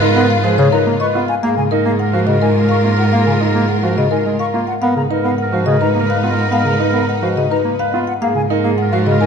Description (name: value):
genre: classical, minimalist pattern music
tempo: 106 BPM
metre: 3/4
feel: straight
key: unclear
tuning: A4 = 441 Hz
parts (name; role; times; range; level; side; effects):
- marimba with medium mallets; melody; 0.0-9.3 s; A#4 to F#5; -20 LUFS; left 10 dB; none
- warm symphonic string section; sustained chords; 0.0-9.3 s; D#4 to B4; -24 LUFS; left 4 dB; none
- warm grand piano; arpeggios; 0.0-9.3 s; D#4 to B4; -21 LUFS; right 8 dB; none
- warm cello; bass; 0.0-9.3 s; G#2; -18 LUFS; right 2 dB; none
- clear clarinet; second line; 0.1-9.3 s; A#4 to B4; -26 LUFS; right 3 dB; none
- mellow bass clarinet; accompaniment; 0.2-9.2 s; C#3 to B3; -20 LUFS; equal; none
- mellow silver concert flute; arpeggios; 0.2-9.3 s; E#5 to C#6; -27 LUFS; left 4 dB; none
room: moderate recital hall reverb, RT60 1.5 s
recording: dark, warm production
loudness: -13 LUFS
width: side -6 dB against mid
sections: 0.0-9.3 A section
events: none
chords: 0.0 G#m69; 1.4 F#maj9/G#; 4.8 Bmaj9/G#; 8.2 F#maj9/G#